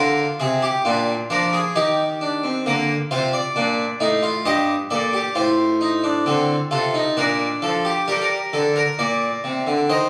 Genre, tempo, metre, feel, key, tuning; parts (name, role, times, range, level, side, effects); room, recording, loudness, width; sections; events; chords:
classical, baroque-style 3-part fugue for harpsichord; 66 BPM; 3/4; straight; A4 = 439 Hz
harpsichord; solo; 0.0-10.1 s; G2 to Eb5; -20 LUFS; equal
wet recital hall reverb, RT60 1.6 s; recorded on a phone in the room, club reverb, vinyl crackle; -20 LUFS; mono
0.0-8.1 A section; 8.1-10.1 B section
0.0 Bb7; 1.8 Eb; 2.7 Bb; 4.5 Eb/G; 5.4 F7/A; 7.2 Bb; 8.1 Gm